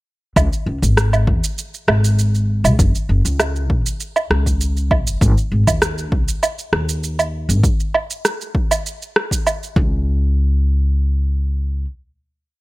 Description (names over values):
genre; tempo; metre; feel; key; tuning
sunset chillout; 99 BPM; 4/4; straight; unclear; A4 = 440 Hz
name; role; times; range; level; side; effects
upright bass; bass; 0.4-11.8 s; F#1 to E2; -17 LUFS; equal; none
electronic kick drum; drums; 0.4-9.9 s; none; -19 LUFS; equal; overdrive
electronic woodblock, shaker and rim click; drums; 0.4-9.7 s; none; -19 LUFS; right 2 dB; overdrive
room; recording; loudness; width
digital ambience; none; -16 LUFS; side -20 dB against mid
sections
0.4-10.1 groove; 10.1-12.5 final hit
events
none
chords
none